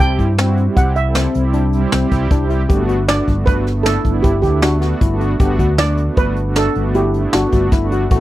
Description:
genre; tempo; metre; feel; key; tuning
progressive instrumental, band music in an uneven meter; 155 BPM; 7/4; straight; G major; A4 = 440 Hz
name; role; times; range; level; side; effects
steel pan; melody; 0.0-7.7 s; F#4 to G5; -20 LUFS; right 3 dB; none
brassy analog pad; accompaniment; 0.0-8.2 s; G3 to A4; -21 LUFS; right 3 dB; chorus
barky tine electric piano; arpeggios; 0.0-8.2 s; C4 to G4; -22 LUFS; left 6 dB; none
overdriven fingered electric bass; bass; 0.0-8.2 s; G1 to G2; -18 LUFS; equal; none
jazz brush drum kit; drums; 0.0-8.2 s; hi-hat, kick drum, snare drum; -17 LUFS; equal; none
room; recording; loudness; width
light reverb; dry, close 1970s-style studio recording; -13 LUFS; side -15 dB against mid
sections
0.0-8.2 A section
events
none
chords
0.0 C; 2.7 Gmaj7

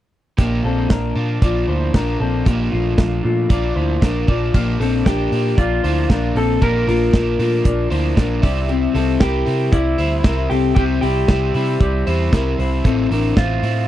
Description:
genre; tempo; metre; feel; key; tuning
jangly indie pop; 116 BPM; 4/4; straight; unclear; A4 = 440 Hz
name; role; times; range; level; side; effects
crunchy overdriven guitar; accompaniment; 0.4-13.9 s; A2 to E4; -25 LUFS; right 5 dB; none
electric guitar through a small old amp; arpeggios; 0.4-13.9 s; G3 to E5; -21 LUFS; left 5 dB; none
vintage muted picked electric bass; bass; 0.4-13.9 s; A1 to C3; -20 LUFS; equal; none
modern studio drum kit; drums; 0.4-13.8 s; crash cymbal, hi-hat, kick drum, snare drum; -15 LUFS; right 1 dB; none
electric guitar through a small old amp; melody; 5.1-13.9 s; E4 to Bb4; -22 LUFS; equal; tape echo
room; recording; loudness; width
studio reverb; dry, close 1970s-style studio recording; -15 LUFS; side -13 dB against mid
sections
0.4-4.5 A section; 4.5-13.9 B section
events
none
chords
0.4 Bb; 8.4 C; 12.8 Am

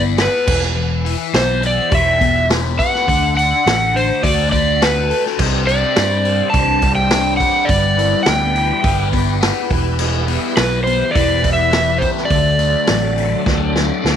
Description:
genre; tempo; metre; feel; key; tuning
psychedelic rock; 104 BPM; 4/4; straight; unclear; A4 = 440 Hz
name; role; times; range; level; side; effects
fuzz guitar; riff; 0.0-14.2 s; C3 to B4; -21 LUFS; left 13 dB; distortion, phaser
fingered electric bass; bass; 0.0-14.2 s; E1 to G2; -20 LUFS; right 1 dB; none
overdriven slide guitar; melody; 0.2-14.2 s; B4 to A5; -17 LUFS; right 1 dB; tape echo
vintage drum kit; drums; 0.2-14.2 s; crash cymbal, hi-hat, kick drum, snare drum; -20 LUFS; right 1 dB; none
tonewheel organ; sustained chords; 5.4-14.2 s; F#3 to C5; -26 LUFS; right 16 dB; slow rotary speaker, overdrive
room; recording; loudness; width
light reverb; 1960s-style stereo with parts hard left and right; -13 LUFS; side -9 dB against mid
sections
0.0-14.2 A section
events
drum fill 13.5-14.2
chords
0.5 Em; 3.1 D; 5.4 Csus2; 7.7 G6; 9.7 Em; 12.3 D

